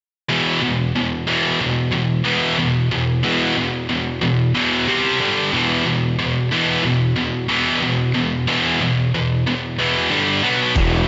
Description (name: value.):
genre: hard rock.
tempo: 92 BPM.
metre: 4/4.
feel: straight.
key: E minor.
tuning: A4 = 439 Hz.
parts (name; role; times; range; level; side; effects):
scooped high-gain guitar; riff; 0.3-11.1 s; E2 to C4; -19 LUFS; equal; distortion.
fuzz picked electric bass; bass; 10.8-11.0 s; E1; -20 LUFS; equal; overdrive.
dusty soul sampler-style drum kit; drums; 10.8-10.9 s; hi-hat, kick drum; -21 LUFS; equal; none.
room: wet lush hall reverb, RT60 2.1 s.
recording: big arena sound, nothing above 7.8 kHz.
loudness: -19 LUFS.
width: mono.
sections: 0.3-11.1 A section.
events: none.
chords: 0.3 E5; 4.9 C5; 5.2 G5; 5.5 E5; 10.1 G5; 10.4 B5.